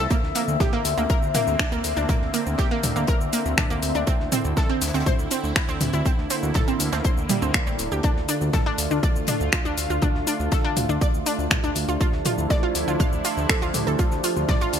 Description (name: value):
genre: melodic techno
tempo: 121 BPM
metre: 4/4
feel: straight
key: D minor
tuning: A4 = 442 Hz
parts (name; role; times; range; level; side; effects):
- sweeping resonant pad; sustained chords; 0.0-14.8 s; D3 to F4; -30 LUFS; right 2 dB; chorus, sidechain pumping
- analog pluck; arpeggios; 0.0-14.7 s; G3 to F5; -27 LUFS; right 2 dB; chorus, cassette tape, sidechain pumping, ping-pong delay
- fat analog bass; bass; 0.0-14.8 s; D1 to D2; -27 LUFS; equal; sidechain pumping
- deep dark ambient pad; texture; 0.0-14.8 s; D4 to F5; -30 LUFS; left 2 dB; chorus, built-in reverb, sidechain pumping
- deep reggae drum kit; drums; 0.1-14.8 s; hi-hat, snare drum; -38 LUFS; left 4 dB; none
- electronic kick drum; drums; 0.1-14.6 s; none; -23 LUFS; equal; none
- house drum kit; drums; 0.1-14.8 s; finger snaps, hi-hat, shaker, toms; -26 LUFS; left 1 dB; none
room: light reverb, digital ambience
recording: bright 1980s-style digital production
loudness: -20 LUFS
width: side -8 dB against mid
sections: 0.0-14.8 A section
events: none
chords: 0.1 Bbsus2/D; 4.1 Cadd9/D; 8.0 Dm; 12.0 Fmaj7/D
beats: | 0.11 0.60 1.10 1.59 | 2.09 2.59 3.08 3.58 | 4.07 4.57 5.07 5.56 | 6.06 6.55 7.05 7.54 | 8.04 8.54 9.03 9.53 | 10.02 10.52 11.02 11.51 | 12.01 12.50 13.00 13.49 | 13.99 14.49